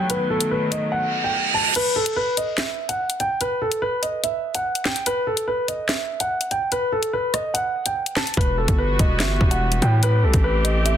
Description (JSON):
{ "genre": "hip hop, drill", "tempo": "145 BPM", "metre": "4/4", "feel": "half-time", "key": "E harmonic minor", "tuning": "A4 = 437 Hz", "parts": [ { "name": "dark concert grand piano", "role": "melody", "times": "0.0-11.0 s", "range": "A4 to A5", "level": "-23 LUFS", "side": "right 1 dB", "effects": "low-pass filter, digital delay" }, { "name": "warm studio string section", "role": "sustained chords", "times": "0.0-1.7, 8.4-11.0 s", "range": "D#3 to G4", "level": "-26 LUFS", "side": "left 1 dB", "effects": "none" }, { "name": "drill drum kit", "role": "drums", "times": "0.1-11.0 s", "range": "crash cymbal, handclaps, hi-hat, kick drum, rim click, snare drum", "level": "-22 LUFS", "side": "left 1 dB", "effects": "none" }, { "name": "reverse cymbal", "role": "sound effects", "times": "1.0-1.8 s", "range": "none", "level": "-22 LUFS", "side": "right 5 dB", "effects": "none" }, { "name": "distorted 808-style bass", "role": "bass", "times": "8.4-11.0 s", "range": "E1 to A2", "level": "-20 LUFS", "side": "equal", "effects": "distortion" } ], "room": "light reverb", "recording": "dense, heavily limited modern master", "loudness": "-19 LUFS", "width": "side -10 dB against mid", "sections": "0.0-1.8 A section; 1.8-11.0 B section", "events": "reverse cymbal 1.0-1.8; kick muted 1.8-8.4", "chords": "0.1 B7; 1.8 N.C.; 8.4 Emadd9; 10.0 Am7" }